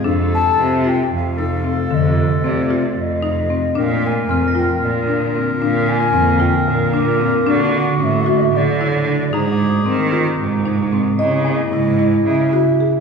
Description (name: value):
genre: contemporary instrumental, chamber music in an uneven meter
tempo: 226 BPM (eighths)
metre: 7/8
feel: straight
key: unclear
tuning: A4 = 439 Hz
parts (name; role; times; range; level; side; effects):
- warm clarinet; second line; 0.0-13.0 s; Eb4 to Bb4; -23 LUFS; left 1 dB; none
- deep dark ambient pad; sustained chords; 0.0-11.2 s; C3 to Ab4; -25 LUFS; right 3 dB; chorus, built-in reverb
- buzzing marimba with medium mallets; arpeggios; 0.0-13.0 s; D3 to Eb5; -20 LUFS; left 4 dB; none
- breathy mellow wooden flute; melody; 0.1-13.0 s; Bb4 to A5; -23 LUFS; left 2 dB; none
- clear cello; bass; 0.1-12.5 s; F2 to Eb3; -19 LUFS; right 3 dB; none
- glockenspiel with rubber mallets; texture; 4.3-12.8 s; Ab5 to Bb6; -30 LUFS; left 1 dB; none
room: wet recital hall reverb, RT60 1.6 s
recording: heard from further back in the room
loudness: -14 LUFS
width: side -5 dB against mid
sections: 0.0-11.2 A section; 11.2-13.0 B section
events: none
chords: 0.0 F; 3.8 Bb; 7.5 D; 9.3 Abadd9; 11.2 Dbm